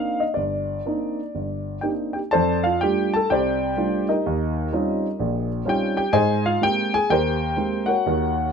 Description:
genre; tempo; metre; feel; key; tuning
solo jazz; 125 BPM; 4/4; swing 66% on 8ths, rubato; unclear; A4 = 441 Hz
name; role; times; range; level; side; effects
dark baby grand piano; solo; 0.0-8.5 s; G1 to A5; -20 LUFS; equal; none
room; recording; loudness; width
light reverb; none; -20 LUFS; side -6 dB against mid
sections
0.0-2.3 A section; 2.3-8.5 B section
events
none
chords
0.0 Cm9; 2.3 F69; 4.3 Eb13; 6.2 Abmaj9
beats
| 0.37 0.85 1.34 1.84 | 2.33 2.82 3.30 3.78 | 4.26 4.73 5.21 5.68 | 6.15 6.63 7.11 7.59 | 8.07

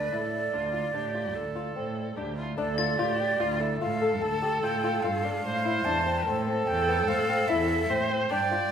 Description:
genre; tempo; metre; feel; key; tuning
contemporary instrumental, chamber music in an uneven meter; 147 BPM; 7/4; straight; D minor; A4 = 442 Hz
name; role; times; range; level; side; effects
breathy mellow silver concert flute; melody; 0.0-8.7 s; D5 to A5; -29 LUFS; right 1 dB; none
rich viola; second line; 0.0-8.7 s; F4 to D5; -31 LUFS; right 1 dB; none
flamenco guitar; arpeggios; 0.0-8.7 s; B3 to A4; -31 LUFS; left 3 dB; none
dark cello; bass; 0.0-8.6 s; D2 to A2; -33 LUFS; right 2 dB; none
glockenspiel with hard plastic mallets; texture; 2.8-4.1 s; A6; -35 LUFS; left 4 dB; none
room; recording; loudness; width
wet recital hall reverb, RT60 1.6 s; recorded in a church or concert hall; -25 LUFS; side -8 dB against mid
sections
0.0-2.6 A section; 2.6-8.7 A section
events
none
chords
0.0 Dm; 5.4 Am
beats
0.12 0.53 0.94 1.35 1.76 2.17 | 2.58 2.99 3.40 3.81 4.22 4.63 5.04 | 5.44 5.85 6.26 6.67 7.08 7.49 7.89 | 8.30 8.71

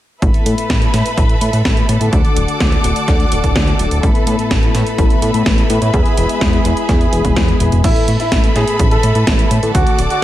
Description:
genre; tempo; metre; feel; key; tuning
italo disco; 126 BPM; 4/4; straight; unclear; A4 = 442 Hz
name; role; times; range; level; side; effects
rich symphonic string section; sustained chords; 0.2-10.2 s; G#4 to D6; -20 LUFS; equal; none
mellow synth brass; stabs; 0.2-10.2 s; A2 to A4; -21 LUFS; left 4 dB; chorus, digital delay
fat analog bass; bass; 0.2-10.1 s; D1 to A2; -17 LUFS; equal; none
electronic kick drum; drums; 0.2-9.8 s; none; -16 LUFS; equal; none
house drum kit; drums; 0.2-10.2 s; crash cymbal, hi-hat, snare drum, toms; -20 LUFS; equal; gated reverb
warm concert grand piano; melody; 7.8-10.2 s; E4 to A4; -19 LUFS; right 1 dB; digital delay
room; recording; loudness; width
little or no reverb; none; -11 LUFS; side -14 dB against mid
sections
0.2-7.8 A section; 7.8-10.2 B section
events
filter sweep on analog polysynth 0.2-7.8, 7.8-10.2; drum fill 7.5-7.8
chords
0.2 Asus2; 2.1 D; 4.0 Asus2; 5.9 E; 7.8 Asus2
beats
| 0.22 0.70 1.18 1.65 | 2.13 2.60 3.08 3.56 | 4.03 4.51 4.99 5.46 | 5.94 6.41 6.89 7.37 | 7.84 8.32 8.79 9.27 | 9.75 10.22

